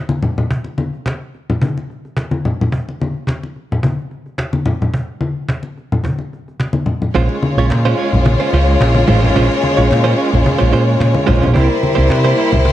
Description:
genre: disco.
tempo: 109 BPM.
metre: 4/4.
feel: straight.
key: Bb dorian.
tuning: A4 = 440 Hz.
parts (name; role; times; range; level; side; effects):
cajon; drums; 0.1-12.7 s; none; -21 LUFS; equal; none.
congas; percussion; 0.1-12.7 s; none; -19 LUFS; left 2 dB; none.
rich studio violin section; second line; 7.1-12.7 s; G3 to Db5; -17 LUFS; left 2 dB; none.
direct-recorded clean electric guitar; accompaniment; 7.1-12.7 s; Ab3 to Db5; -19 LUFS; right 6 dB; tremolo.
mellow French horn section; sustained chords; 7.1-12.7 s; C3 to Bb4; -20 LUFS; left 1 dB; none.
picked electric bass with an envelope filter; bass; 7.2-12.7 s; A1 to C3; -14 LUFS; right 1 dB; none.
room: light reverb, small room ambience.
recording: dark, warm production.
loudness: -13 LUFS.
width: side -13 dB against mid.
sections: 0.0-7.2 A section; 7.2-12.7 B section.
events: none.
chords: 0.0 N.C.; 7.2 Bbm9; 11.6 C7.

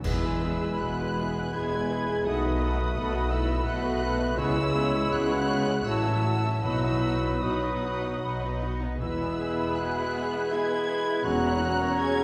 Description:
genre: classical, slow romantic movement for symphony orchestra.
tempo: 75-86 BPM.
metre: 3/4.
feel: rubato.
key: E major.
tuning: A4 = 440 Hz.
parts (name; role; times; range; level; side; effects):
muted symphonic violin section; melody; 0.0-12.2 s; D#6 to G#6; -38 LUFS; equal; none.
bright small flute group; second line; 0.0-12.2 s; A5 to B5; -38 LUFS; equal; none.
warm clarinet; second line; 0.0-12.2 s; C#4 to F#4; -42 LUFS; equal; none.
warm oboe; second line; 0.0-12.2 s; B4 to C#5; -39 LUFS; equal; none.
mellow bassoon; accompaniment; 0.0-12.2 s; F#3 to A3; -37 LUFS; equal; none.
muted symphonic viola section; accompaniment; 0.0-12.2 s; G#3 to A4; -38 LUFS; equal; none.
mellow French horn section; sustained chords; 0.0-12.2 s; D#4 to G#4; -36 LUFS; equal; none.
concert harp; arpeggios; 0.0-12.2 s; A2 to B5; -38 LUFS; equal; none.
muted symphonic cello section; bass; 0.0-11.9 s; E2 to C#3; -35 LUFS; equal; none.
muted symphonic double bass section; bass; 0.0-11.9 s; E1 to C#2; -36 LUFS; equal; none.
clash cymbals and concert bass drum; percussion; 0.0-1.5 s; none; -38 LUFS; equal; none.
timpani; percussion; 0.0-1.1, 6.6-7.8 s; E2 to B2; -37 LUFS; equal; none.
muted symphonic violin section; second line; 0.1-12.2 s; B3 to G#5; -41 LUFS; equal; none.
room: wet scoring stage reverb, RT60 1.8 s.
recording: recorded in a church or concert hall.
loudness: -27 LUFS.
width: mono.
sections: 0.0-12.2 A section.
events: band accent 0.0-0.8.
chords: 0.0 E; 2.3 B7; 4.4 C#m7; 5.9 F#m7/A; 6.6 B; 9.0 E; 11.2 F#7/E.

